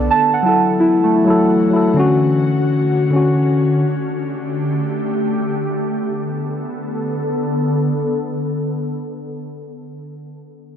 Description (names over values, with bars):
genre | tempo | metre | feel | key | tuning
hip hop | free time | none | none | B minor | A4 = 440 Hz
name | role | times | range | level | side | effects
mellow tine electric piano | accompaniment | 0.0-3.9 s | D3 to D5 | -15 LUFS | left 2 dB | low-pass filter
ethereal airy pad | sustained chords | 0.0-9.9 s | D3 to A4 | -21 LUFS | left 1 dB | ensemble chorus, built-in reverb, low-pass filter
muted felt-like synth keys | arpeggios | 0.0-2.0 s | F#3 to A5 | -15 LUFS | right 2 dB | chorus, low-pass filter, analog delay
room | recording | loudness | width
light reverb, digital ambience | dry, gritty hardware recording, cassette tape | -15 LUFS | side -8 dB against mid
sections
0.0-5.7 A section; 5.7-9.4 B section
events
none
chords
0.1 F#m7; 2.0 Dmaj7; 3.8 A7sus4; 5.7 Bm7